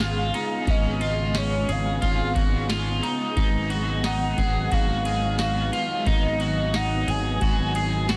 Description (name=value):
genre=dream pop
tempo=89 BPM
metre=4/4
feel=straight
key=G# dorian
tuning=A4 = 444 Hz
part: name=warm velvety synth lead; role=melody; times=0.0-8.2 s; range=C#5 to G#5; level=-32 LUFS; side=equal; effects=chorus, digital delay, shimmer reverb
part: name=overdriven electric guitar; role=accompaniment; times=0.0-8.2 s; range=G#2 to G#4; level=-36 LUFS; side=equal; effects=harmonic tremolo, analog chorus, shimmer reverb
part: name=shimmering ambient pad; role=sustained chords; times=0.0-8.2 s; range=C#3 to G#4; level=-34 LUFS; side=equal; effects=chorus, built-in reverb, shimmer reverb
part: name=electric guitar at the edge of break-up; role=arpeggios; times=0.0-8.2 s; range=C#4 to G#4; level=-31 LUFS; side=equal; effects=lush chorus, digital delay, shimmer reverb
part: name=sustaining fretless electric bass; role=bass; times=0.0-8.2 s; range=G#1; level=-29 LUFS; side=equal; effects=subtle chorus
part: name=booming analog drum machine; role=drums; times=0.0-8.2 s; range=kick drum, ride cymbal, snare drum, tambourine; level=-29 LUFS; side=equal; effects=none
room=light reverb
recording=dense, heavily limited modern master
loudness=-24 LUFS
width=mono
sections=0.0-8.2 A section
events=none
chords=0.0 C#7/G#; 3.4 G#m7